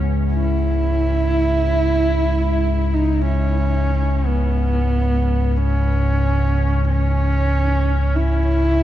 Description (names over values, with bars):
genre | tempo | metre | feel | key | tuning
dark ambient drone | 46 BPM | 4/4 | straight | C# minor | A4 = 440 Hz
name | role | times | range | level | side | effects
deep rumbling drone | drone | 0.0-8.8 s | C#2 to G#2 | -18 LUFS | equal | built-in reverb
warm horsehead fiddle | melody | 0.3-8.8 s | B3 to E4 | -21 LUFS | right 1 dB | diffuse ambient delay
room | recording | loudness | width
moderate huge ambient reverb, RT60 7.9 s | dark, warm production | -16 LUFS | side -12 dB against mid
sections
0.0-8.8 A section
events
none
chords
0.0 C#5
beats
| 0.30 1.60 2.91 4.22 | 5.54 6.85 8.15